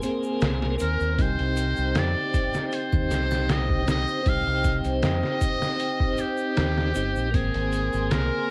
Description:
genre	trip hop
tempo	78 BPM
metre	4/4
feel	straight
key	C minor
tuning	A4 = 440 Hz
part	tonewheel organ	accompaniment	0.0-8.5 s	Bb3 to Bb4	-31 LUFS	equal	overdrive, slow rotary speaker, tremolo, cassette tape, tape echo
part	dark analog pad	sustained chords	0.0-8.5 s	Bb4 to C6	-36 LUFS	equal	chorus, vintage 12-bit sampler grit, cassette tape
part	trip hop sampler-style drum kit	drums	0.0-8.3 s	hi-hat, kick drum, snare drum	-29 LUFS	equal	cassette tape
part	tube shaker and triangle	percussion	0.0-8.3 s	none	-50 LUFS	equal	none
part	deep dub fingered electric bass	bass	0.4-8.3 s	G1 to F2	-29 LUFS	equal	none
part	trumpet with metal mute	melody	0.8-8.5 s	G4 to F5	-31 LUFS	equal	tape echo
room	digital ambience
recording	home recording on cassette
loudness	-25 LUFS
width	mono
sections	0.0-8.5 A section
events	none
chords	0.0 Abadd9; 1.2 Cm; 7.3 Abadd9

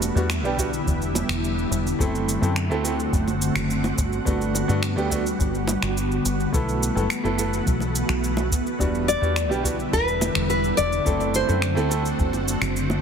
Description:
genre	sunset chillout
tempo	106 BPM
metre	4/4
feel	straight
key	E minor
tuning	A4 = 439 Hz
part	clear baby grand piano	accompaniment	0.0-12.0 s	G3 to A4	-28 LUFS	right 1 dB	auto-pan, ping-pong delay
part	ethereal airy pad	sustained chords	0.0-13.0 s	D3 to F#4	-26 LUFS	equal	ensemble chorus, built-in reverb
part	deep dub fingered electric bass	bass	0.0-13.0 s	E1 to G2	-26 LUFS	equal	none
part	electronic cabasa and finger snaps	drums	0.0-13.0 s	none	-30 LUFS	right 1 dB	small room ambience
part	bongos	percussion	0.0-13.0 s	none	-30 LUFS	right 2 dB	none
part	electronic kick drum	drums	0.6-12.3 s	none	-26 LUFS	equal	small room ambience
part	nylon-string guitar	melody	9.1-12.4 s	B4 to D5	-24 LUFS	left 2 dB	ping-pong delay
room	moderate plate reverb, RT60 2.6 s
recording	heavily compressed radio sound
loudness	-20 LUFS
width	side -7 dB against mid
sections	0.0-13.0 A section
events	none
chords	0.0 Em7; 2.0 D7/F#; 4.0 Gmaj7; 6.5 B7sus4; 8.8 Em7; 11.1 D7/F#

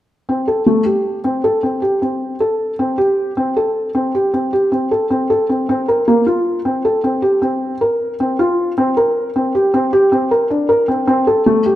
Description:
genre	contemporary instrumental, contemporary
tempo	156 BPM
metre	7/4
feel	straight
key	A phrygian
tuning	A4 = 440 Hz
part	felt-muted upright piano	solo	0.3-11.8 s	A3 to Bb4	-14 LUFS	equal	none
room	moderate recital hall reverb, RT60 1.6 s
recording	dark, warm production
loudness	-14 LUFS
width	side -14 dB against mid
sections	0.3-11.1 A section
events	none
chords	none

